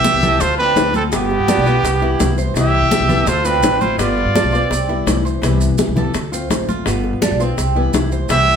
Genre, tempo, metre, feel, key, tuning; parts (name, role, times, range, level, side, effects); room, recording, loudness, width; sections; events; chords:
latin, Cuban son and guajira; 167 BPM; 4/4; straight; C major; A4 = 440 Hz
breathy trumpet; melody; 0.0-5.2, 8.3-8.6 s; G4 to E5; -17 LUFS; right 4 dB
bright trumpet; second line; 0.0-4.7, 8.3-8.6 s; B3 to G4; -24 LUFS; left 5 dB
nylon-string guitar; accompaniment; 0.0-8.6 s; C3 to F4; -23 LUFS; left 4 dB
upright bass; bass; 0.0-8.5 s; G1 to C3; -19 LUFS; equal
bongos; percussion; 0.0-8.5 s; -23 LUFS; left 5 dB
congas; percussion; 0.0-8.6 s; -23 LUFS; equal
maracas; percussion; 0.0-8.5 s; -28 LUFS; right 3 dB
Cuban tres; arpeggios; 0.2-8.5 s; B3 to C5; -24 LUFS; right 5 dB
wet studio reverb, RT60 0.7 s; band playing live in one room; -14 LUFS; side -7 dB against mid
0.0-8.6 A section
0.4 Dm7; 1.1 G7; 1.8 Cmaj7; 3.3 Dm7; 4.0 G7; 4.7 Cmaj7; 6.1 Dm7; 6.9 G7; 7.6 Cmaj7